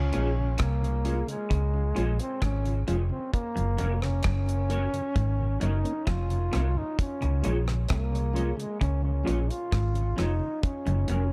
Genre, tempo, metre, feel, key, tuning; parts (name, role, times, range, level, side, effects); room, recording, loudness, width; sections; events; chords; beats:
roots reggae; 66 BPM; 4/4; straight; Db major; A4 = 440 Hz
warm trombone; melody; 0.0-11.3 s; Ab3 to F4; -35 LUFS; equal; dub echo
clean electric guitar; riff; 0.0-11.3 s; F2 to Db3; -39 LUFS; equal
vintage muted fingered electric bass; bass; 0.0-11.3 s; F1 to Db2; -29 LUFS; equal
mellow electric guitar; accompaniment; 0.1-11.2 s; Db4 to Db5; -40 LUFS; equal; ensemble chorus, dub echo
tonewheel organ; accompaniment; 0.1-11.2 s; Gb2 to F4; -40 LUFS; equal
deep reggae drum kit; drums; 0.1-11.3 s; hi-hat, kick drum, rim click; -33 LUFS; equal
small room ambience; echo-heavy mix; -28 LUFS; mono
0.0-11.3 A section
0.0 Db; 3.3 Gb; 7.0 Db; 10.6 Gb
0.60 1.51 2.42 | 3.33 4.25 5.16 6.07 | 6.98 7.89 8.81 9.72 | 10.63